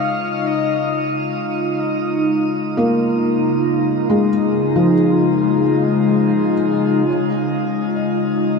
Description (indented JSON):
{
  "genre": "ambient",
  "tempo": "free time",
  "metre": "none",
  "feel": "none",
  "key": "Db major",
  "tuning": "A4 = 440 Hz",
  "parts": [
    { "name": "warbly tape-like pad", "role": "sustained chords", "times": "0.0-8.6 s", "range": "Db3 to F4", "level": "-17 LUFS", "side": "left 1 dB", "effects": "chorus, built-in reverb, phaser" },
    { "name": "felt-muted upright piano", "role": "arpeggios", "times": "2.8-8.6 s", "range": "F3 to Eb5", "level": "-20 LUFS", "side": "left 1 dB", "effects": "ping-pong delay" }
  ],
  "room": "wet shimmer reverb, RT60 8.8 s",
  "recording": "none",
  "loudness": "-15 LUFS",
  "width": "side -4 dB against mid",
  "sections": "0.0-7.1 A section; 7.1-8.6 A section",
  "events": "filter sweep on ambient pad 0.0-7.1",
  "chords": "0.0 Dbadd9",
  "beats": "free time"
}